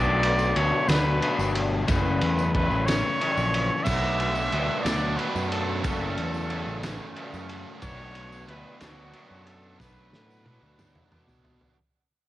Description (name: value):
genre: indie rock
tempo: 61 BPM (dotted quarters)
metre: 6/8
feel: straight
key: B minor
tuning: A4 = 442 Hz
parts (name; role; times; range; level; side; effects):
- breathy trumpet; melody; 0.0-11.4 s; F#4 to E5; -29 LUFS; equal; cassette tape, tape echo
- electric guitar at the edge of break-up; riff; 0.0-11.8 s; F#2 to D4; -32 LUFS; left 6 dB; warbly pitch drift, cassette tape
- fuzz fingered electric bass; bass; 0.0-11.6 s; F#1 to B2; -29 LUFS; equal; overdrive
- tambourine; percussion; 0.1-11.4 s; none; -46 LUFS; left 6 dB; none
- loose indie drum kit; drums; 0.2-11.8 s; crash cymbal, kick drum, ride cymbal, snare drum, toms; -28 LUFS; equal; cassette tape
- distorted electric guitar; riff; 3.9-11.8 s; F#2 to D4; -34 LUFS; right 6 dB; overdrive, lush chorus, cassette tape
room: little or no reverb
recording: home recording on cassette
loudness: -22 LUFS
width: side -15 dB against mid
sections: 0.0-11.8 A section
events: fade-out 0.0-11.8; drum fill 9.8-11.8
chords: 0.0 Bm7; 1.9 F#m7; 3.9 Bm7; 5.8 F#m7; 7.8 Bm7